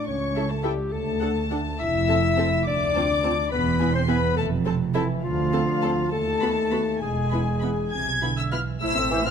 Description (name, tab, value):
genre	cinematic, playful, whimsical film cue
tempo	69 BPM (dotted quarters)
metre	6/8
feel	straight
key	unclear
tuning	A4 = 441 Hz
part	warm clarinet	second line	0.0-9.2 s	E4 to E5	-27 LUFS	left 2 dB	none
part	warm studio violin section	second line	0.0-9.3 s	A4 to E6	-31 LUFS	left 5 dB	none
part	warm French horn section	sustained chords	0.0-9.2 s	E3 to E4	-29 LUFS	left 6 dB	none
part	dark chamber double bass section	bass	0.1-9.3 s	E1 to D#2	-29 LUFS	right 4 dB	none
part	warm chamber cello section	bass	0.1-9.3 s	C#2 to E3	-29 LUFS	right 4 dB	none
part	warm studio violin section	melody	0.4-9.3 s	E5 to G#6	-31 LUFS	left 2 dB	none
part	dark chamber viola section	accompaniment	0.4-9.3 s	A3 to A4	-31 LUFS	right 1 dB	none
part	warm oboe	second line	7.9-9.3 s	E5 to G#5	-32 LUFS	right 2 dB	none
part	hollow flute section	second line	9.1-9.2 s	C5	-35 LUFS	left 1 dB	none
part	mellow bassoon	accompaniment	9.1-9.2 s	E3	-26 LUFS	right 4 dB	none
room	light reverb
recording	close, detailed microphones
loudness	-21 LUFS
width	side -7 dB against mid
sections	0.0-8.8 A section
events	none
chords	0.1 A/C#; 0.9 D5; 1.8 Fmaj7; 2.7 Dm7; 3.5 E5; 4.4 F; 5.2 Dm7; 6.1 B7/D#; 7.0 E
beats	| 0.07 0.92 | 1.80 2.67 | 3.52 4.38 | 5.24 6.12 | 7.02 7.92 | 8.82